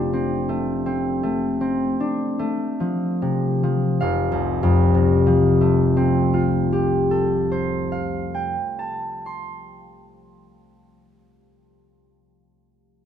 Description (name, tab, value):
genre	classical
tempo	36-43 BPM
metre	4/4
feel	rubato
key	F major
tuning	A4 = 445 Hz
part	concert harp	accompaniment	0.0-11.8 s	F1 to C6	-19 LUFS	left 1 dB	none
room	light reverb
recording	dark, warm production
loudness	-18 LUFS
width	side -9 dB against mid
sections	0.0-4.0 A section; 4.0-10.3 B section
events	slowing down 0.0-4.0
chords	0.0 F6; 4.0 Fadd9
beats	0.85 2.39 | 4.02 5.57 7.14 8.70